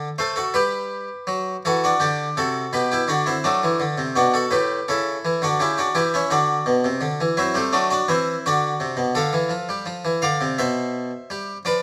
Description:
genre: classical, baroque-style suite movement for harpsichord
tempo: 84 BPM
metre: 4/4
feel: rubato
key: unclear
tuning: A4 = 444 Hz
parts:
  - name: harpsichord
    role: solo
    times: 0.0-11.8 s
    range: A2 to F5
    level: -22 LUFS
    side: equal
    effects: none
room: moderate stone room reverb, RT60 1.1 s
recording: none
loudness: -22 LUFS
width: mono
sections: 0.0-11.8 A section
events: none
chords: 0.0 D (rootless); 0.6 G; 3.5 D; 4.9 Dmaj9/C#; 6.3 D; 9.2 Dm; 10.6 G/B

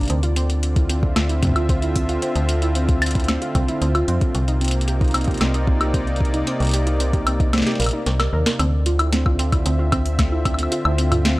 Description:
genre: IDM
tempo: 113 BPM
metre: 4/4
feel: straight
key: D minor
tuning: A4 = 440 Hz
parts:
  - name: warm analog pad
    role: sustained chords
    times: 0.0-11.4 s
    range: C3 to E5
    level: -26 LUFS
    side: equal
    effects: chorus
  - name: warbly dusty pluck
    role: arpeggios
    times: 0.0-11.3 s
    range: C4 to Bb4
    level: -26 LUFS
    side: right 2 dB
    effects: chorus, tape echo
  - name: metallic FM bass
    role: bass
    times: 0.0-11.4 s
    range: Bb1 to F2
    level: -21 LUFS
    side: equal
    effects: none
  - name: booming analog drum machine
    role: drums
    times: 0.0-11.4 s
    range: hi-hat, snare drum, toms, woodblock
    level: -23 LUFS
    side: left 1 dB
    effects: studio reverb
  - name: electronic kick drum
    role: drums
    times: 0.8-10.6 s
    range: none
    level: -21 LUFS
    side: equal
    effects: studio reverb
room: little or no reverb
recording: dry, gritty hardware recording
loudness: -17 LUFS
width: side -20 dB against mid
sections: 0.0-8.6 A section; 8.6-11.4 B section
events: kick drops out 7.5-8.6; drum fill 8.1-8.6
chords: 0.1 Dm9; 4.3 Cm9; 8.6 Dm9

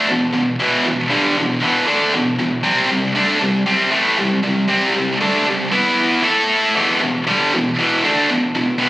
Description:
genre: metal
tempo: 117 BPM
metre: 4/4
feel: straight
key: E minor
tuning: A4 = 439 Hz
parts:
  - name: heavy high-gain guitar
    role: solo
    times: 0.0-8.9 s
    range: E2 to A4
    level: -14 LUFS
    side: equal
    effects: distortion, tape echo
room: light reverb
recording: recorded on a phone in the room, studio reverb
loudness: -14 LUFS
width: side -17 dB against mid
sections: 0.0-8.9 A section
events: none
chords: 0.0 Em; 2.7 C5; 5.7 E5; 6.2 A5; 6.8 Em

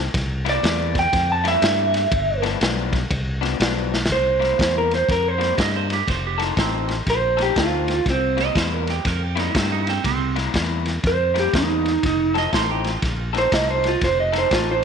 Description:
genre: electric blues shuffle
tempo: 121 BPM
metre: 4/4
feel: swing 64% on 8ths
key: C mixolydian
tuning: A4 = 441 Hz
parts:
  - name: fingered electric bass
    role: bass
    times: 0.0-14.8 s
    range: F1 to G2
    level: -25 LUFS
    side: equal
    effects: none
  - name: crunchy breakbeat drum kit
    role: drums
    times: 0.1-14.7 s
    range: kick drum, ride cymbal, snare drum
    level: -24 LUFS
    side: equal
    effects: none
  - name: electric guitar through a small old amp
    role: melody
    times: 0.5-14.8 s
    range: C4 to A5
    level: -20 LUFS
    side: right 2 dB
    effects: none
  - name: electric guitar through a small old amp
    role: riff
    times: 0.5-14.8 s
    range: G2 to A4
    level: -27 LUFS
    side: left 14 dB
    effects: wide subtle chorus
  - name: clean electric guitar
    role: second line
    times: 5.6-13.3 s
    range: C4 to Eb5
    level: -26 LUFS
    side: right 11 dB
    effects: wide subtle chorus
room: light reverb, small room ambience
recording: 1960s-style stereo with parts hard left and right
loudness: -18 LUFS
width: side -6 dB against mid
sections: 0.0-4.1 A section; 4.1-14.8 B section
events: clean electric guitar solo 0.0-4.1; drum fill 3.8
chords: 0.1 C7; 2.1 G7; 4.1 C7; 6.1 F7; 8.1 C7; 12.0 F7

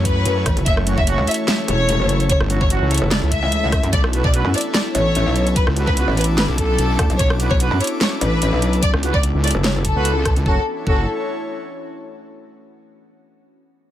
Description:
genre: heavy wobble dubstep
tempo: 147 BPM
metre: 4/4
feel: swing 54% on 16ths, half-time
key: F# minor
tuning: A4 = 439 Hz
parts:
  - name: evolving wavetable pad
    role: sustained chords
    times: 0.0-10.6 s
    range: E3 to F#4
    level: -29 LUFS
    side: left 2 dB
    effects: chorus, built-in reverb, sidechain pumping
  - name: wobble bass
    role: bass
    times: 0.0-11.1 s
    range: F#1 to F#2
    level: -20 LUFS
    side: equal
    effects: chorus, overdrive
  - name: airy breathy pad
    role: texture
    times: 0.0-12.1 s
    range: E4 to D6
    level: -28 LUFS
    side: left 1 dB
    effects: chorus, sidechain pumping
  - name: warm symphonic violin section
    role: melody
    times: 0.1-11.0 s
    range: A4 to E5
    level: -23 LUFS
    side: left 2 dB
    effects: digital delay
  - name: dubstep drum kit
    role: drums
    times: 0.1-10.4 s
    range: hi-hat, rim click, snare drum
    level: -22 LUFS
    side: right 1 dB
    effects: none
  - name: electronic kick drum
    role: drums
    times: 0.1-11.0 s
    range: none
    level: -20 LUFS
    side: equal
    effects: none
  - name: metallic wobble bass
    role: bass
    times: 0.5-9.9 s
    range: E1 to F#2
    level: -19 LUFS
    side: equal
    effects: distortion, chorus, overdrive
  - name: mellow brass ensemble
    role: stabs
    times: 0.9-11.0 s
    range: F#3 to B4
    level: -27 LUFS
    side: right 5 dB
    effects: digital delay
room: light reverb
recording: none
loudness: -16 LUFS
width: side -12 dB against mid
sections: 0.0-10.5 A section; 10.5-12.1 B section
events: drop 0.0-10.5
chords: 0.0 F#m7; 3.9 Bmadd9; 10.5 F#m7

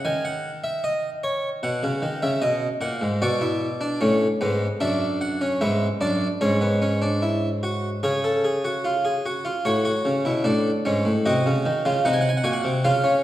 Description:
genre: classical, baroque-style 3-part fugue for harpsichord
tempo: 75 BPM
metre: 4/4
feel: straight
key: F# minor from 3.2 s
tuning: A4 = 438 Hz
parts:
  - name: harpsichord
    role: solo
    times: 0.0-13.2 s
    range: F#2 to G#5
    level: -20 LUFS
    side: equal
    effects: none
room: wet recital hall reverb, RT60 1.5 s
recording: heard from further back in the room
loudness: -21 LUFS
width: side -13 dB against mid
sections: 0.0-9.6 A section; 9.6-13.2 B section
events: none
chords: 0.0 D#m; 1.6 B; 3.2 Bm; 6.4 C#sus4/G#; 8.0 C#; 9.6 F#m/A; 11.2 G#7/B#

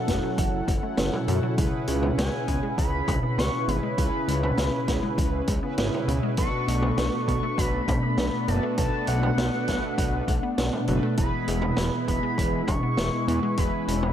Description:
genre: synthwave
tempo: 100 BPM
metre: 4/4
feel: straight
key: unclear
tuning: A4 = 440 Hz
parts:
  - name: expressive synth lead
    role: melody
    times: 0.0-14.1 s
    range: F#5 to C#6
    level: -32 LUFS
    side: left 1 dB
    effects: wide subtle chorus, ping-pong delay
  - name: warm analog pad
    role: sustained chords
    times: 0.0-14.1 s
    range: C#3 to F#5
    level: -31 LUFS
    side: left 1 dB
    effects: chorus, sidechain pumping
  - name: analog synth brass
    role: stabs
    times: 0.0-14.1 s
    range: B2 to B4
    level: -32 LUFS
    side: right 2 dB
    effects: chorus, ping-pong delay
  - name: wide unison pluck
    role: arpeggios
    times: 0.1-14.1 s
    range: E3 to E4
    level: -36 LUFS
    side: left 1 dB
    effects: none
  - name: fat analog bass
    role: bass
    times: 0.1-14.1 s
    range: E1 to F#2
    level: -28 LUFS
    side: equal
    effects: sidechain pumping
  - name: electronic kick drum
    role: drums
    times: 0.1-13.7 s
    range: none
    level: -28 LUFS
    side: equal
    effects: overdrive
  - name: raw garage drum kit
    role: drums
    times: 0.1-14.1 s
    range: hi-hat, snare drum, toms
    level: -29 LUFS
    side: equal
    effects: none
room: light reverb, studio reverb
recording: dark, warm production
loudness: -23 LUFS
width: side -10 dB against mid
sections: 0.0-14.1 A section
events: none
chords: 0.0 F#m7; 1.6 C#m7; 6.4 Bm7; 11.2 E

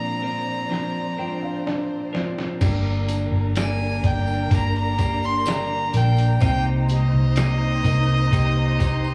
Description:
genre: pop ballad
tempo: 63 BPM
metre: 4/4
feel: straight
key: unclear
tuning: A4 = 440 Hz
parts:
  - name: warm violin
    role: melody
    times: 0.0-9.1 s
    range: Eb5 to C6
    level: -29 LUFS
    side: equal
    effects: slapback echo
  - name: felt-muted upright piano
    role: accompaniment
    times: 0.0-9.1 s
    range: Bb2 to G5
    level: -33 LUFS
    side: equal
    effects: slapback echo
  - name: warm studio string section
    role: sustained chords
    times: 0.0-9.1 s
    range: F3 to Bb5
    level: -35 LUFS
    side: equal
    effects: none
  - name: twelve-string electric guitar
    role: arpeggios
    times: 0.0-9.1 s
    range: G2 to Bb4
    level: -30 LUFS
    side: equal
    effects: slapback echo
  - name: lo-fi sampler-style drum kit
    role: drums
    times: 0.7-9.0 s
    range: crash cymbal, hi-hat, kick drum, snare drum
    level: -27 LUFS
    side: equal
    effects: overdrive
  - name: vintage muted fingered electric bass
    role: bass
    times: 2.6-9.1 s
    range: G1 to C2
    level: -24 LUFS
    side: equal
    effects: none
  - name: tambourine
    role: percussion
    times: 2.6-9.1 s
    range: none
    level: -46 LUFS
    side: equal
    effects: none
  - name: warm studio violin section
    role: second line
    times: 7.8-9.1 s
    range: C6 to Eb6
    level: -38 LUFS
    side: equal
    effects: none
room: small room ambience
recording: live gig heard through the venue's PA, club reverb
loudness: -22 LUFS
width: mono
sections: 0.0-2.6 A section; 2.6-9.1 B section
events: felt piano fill 0.7-2.6; drum fill 0.7-2.6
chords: 0.0 Bbadd9; 2.6 Gm; 6.4 Cm7

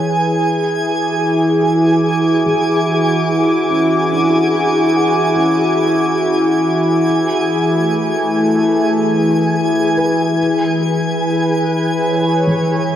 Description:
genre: ambient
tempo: 72 BPM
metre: 4/4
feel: straight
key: E mixolydian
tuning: A4 = 437 Hz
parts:
  - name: warm analog pad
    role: sustained chords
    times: 0.0-13.0 s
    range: E3 to D6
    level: -14 LUFS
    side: equal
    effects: chorus
  - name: twinkling granular texture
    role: texture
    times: 0.0-13.0 s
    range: G#4 to G#5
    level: -19 LUFS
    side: equal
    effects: built-in reverb
  - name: felt-muted upright piano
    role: arpeggios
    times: 1.6-13.0 s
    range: E3 to F#5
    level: -26 LUFS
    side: equal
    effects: tape echo
  - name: organ-like drone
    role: drone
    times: 8.1-13.0 s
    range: E3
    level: -22 LUFS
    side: left 1 dB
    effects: ensemble chorus, built-in reverb
room: wet lush hall reverb, RT60 3.0 s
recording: worn, warbling old tape, cassette tape, warbly pitch drift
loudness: -13 LUFS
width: side -10 dB against mid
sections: 0.0-13.0 A section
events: fade-in on felt piano 0.0-13.0; fade-out 11.5-13.0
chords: 0.4 E7; 7.0 Dadd9/E; 10.4 E6

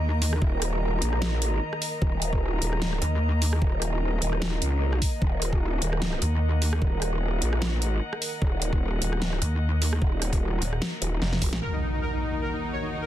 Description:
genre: heavy wobble dubstep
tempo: 150 BPM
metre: 4/4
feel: swing 55% on 16ths, half-time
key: Eb minor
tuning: A4 = 439 Hz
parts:
  - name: rich chamber string section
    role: sustained chords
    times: 0.0-13.1 s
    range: Eb2 to Bb5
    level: -36 LUFS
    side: left 1 dB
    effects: sidechain pumping, low-pass filter
  - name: pulsing pluck wobble bass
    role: bass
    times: 0.0-0.4, 3.0-3.6, 6.2-6.8, 9.4-11.6 s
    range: Eb1 to Eb2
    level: -24 LUFS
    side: equal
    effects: chorus, overdrive
  - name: granular cloud pad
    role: texture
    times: 0.0-13.1 s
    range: Eb4 to Bb5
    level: -36 LUFS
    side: right 1 dB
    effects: built-in reverb, sidechain pumping
  - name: dubstep drum kit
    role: drums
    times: 0.2-13.1 s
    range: hi-hat, rim click, snare drum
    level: -31 LUFS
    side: right 1 dB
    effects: low-pass filter on hats, low-pass filter on snare, low-pass filter on cymbals
  - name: growl bass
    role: bass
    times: 0.4-11.5 s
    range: Eb1 to Db2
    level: -26 LUFS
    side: equal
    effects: chorus, overdrive
  - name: electronic kick drum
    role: drums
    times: 0.4-11.5 s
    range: none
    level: -25 LUFS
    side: equal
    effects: none
  - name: soft supersaw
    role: melody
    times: 11.6-13.1 s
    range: Eb4 to Db5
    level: -30 LUFS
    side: left 1 dB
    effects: ping-pong delay
  - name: impact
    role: sound effects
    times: 11.6-13.1 s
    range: none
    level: -30 LUFS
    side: equal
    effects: none
room: little or no reverb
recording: dense, heavily limited modern master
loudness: -24 LUFS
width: side -12 dB against mid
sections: 0.0-11.6 A section; 11.6-13.1 B section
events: drop 0.0-11.6; drum fill 11.2-11.6; band accent 11.5; impact 11.6-13.1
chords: 0.0 Eb5; 11.6 Ebm

